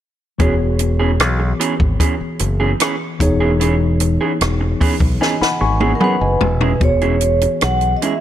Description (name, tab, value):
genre	lush 1970s-style soul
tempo	75 BPM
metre	4/4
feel	straight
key	E major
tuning	A4 = 440 Hz
part	mellow tine electric piano	accompaniment	0.4-8.2 s	E3 to C#6	-21 LUFS	left 3 dB	medium stereo tremolo
part	electric guitar through a small old amp	riff	0.4-8.1 s	E3 to G#4	-22 LUFS	right 5 dB	none
part	modern bright fingered electric bass	bass	0.4-7.9 s	E1 to B1	-18 LUFS	equal	none
part	compact cocktail drum kit	drums	0.4-8.2 s	hi-hat, kick drum, rim click, snare drum, toms	-19 LUFS	equal	none
part	vibraphone with medium mallets	melody	6.0-8.2 s	A#4 to F#5	-19 LUFS	right 2 dB	none
room	light reverb, studio ambience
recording	none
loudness	-14 LUFS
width	side -11 dB against mid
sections	0.4-6.8 A section; 6.8-8.2 B section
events	drum fill 5.2-6.8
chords	0.4 E6; 3.2 C#m7/E; 6.4 E6